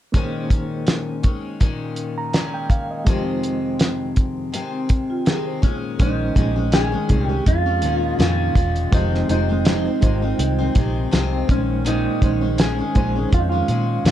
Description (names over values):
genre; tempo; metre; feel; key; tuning
indie pop, bedroom pop; 82 BPM; 4/4; swing 55% on 16ths; Bb minor; A4 = 440 Hz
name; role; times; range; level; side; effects
picked steel-string acoustic guitar; accompaniment; 0.1-14.1 s; F2 to Db4; -25 LUFS; left 4 dB; lush chorus, warbly pitch drift
reed electric piano; accompaniment; 0.1-14.1 s; Ab3 to Bb5; -28 LUFS; right 2 dB; fast tremolo, plate reverb
cloth-damped thuddy drum kit; drums; 0.1-14.1 s; hi-hat, kick drum, snare drum; -18 LUFS; equal; none
vibraphone with medium mallets; second line; 5.1-5.8 s; F4 to C5; -30 LUFS; right 5 dB; lush chorus, tape echo, plate reverb
mellow electric guitar; melody; 5.6-14.1 s; Db4 to Ab4; -24 LUFS; right 2 dB; wide subtle chorus, tape echo, plate reverb
vintage muted fingered electric bass; bass; 6.0-14.1 s; E1 to Bb2; -22 LUFS; equal; none
room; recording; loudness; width
light reverb; dark, warm production; -18 LUFS; side -11 dB against mid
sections
0.1-6.0 A section; 6.0-14.1 B section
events
none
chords
0.1 Bbm11; 3.1 Fm7; 5.6 Bbm11; 8.9 Fm7; 11.5 Bbm11